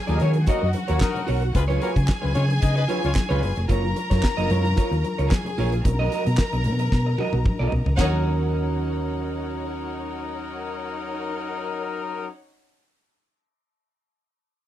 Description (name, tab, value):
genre	disco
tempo	112 BPM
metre	4/4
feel	straight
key	Eb minor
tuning	A4 = 440 Hz
part	rich studio violin section	second line	0.0-12.3 s	Eb4 to Bb5	-31 LUFS	left 2 dB	none
part	electric guitar at the edge of break-up	accompaniment	0.1-12.4 s	Db4 to Eb5	-29 LUFS	right 4 dB	spring reverb
part	warm horn section	stabs	0.1-3.5, 8.0-12.3 s	Gb3 to Eb5	-30 LUFS	left 6 dB	none
part	hollow-body short-scale fingered electric bass	bass	0.1-12.3 s	F1 to Eb3	-23 LUFS	equal	none
part	damped 70s drum kit	drums	0.1-8.1 s	handclaps, hi-hat, kick drum, ride cymbal, snare drum, toms	-22 LUFS	equal	none
part	congas	percussion	0.1-8.2 s	none	-32 LUFS	left 2 dB	none
room	little or no reverb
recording	dry, close 1970s-style studio recording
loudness	-21 LUFS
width	side -12 dB against mid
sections	0.0-8.0 A section; 8.0-12.3 B section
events	drum fill 6.9-8.0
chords	0.0 Ebm7; 1.6 Db7; 3.7 Gbmaj7; 5.8 Bmaj7; 8.0 Ebm7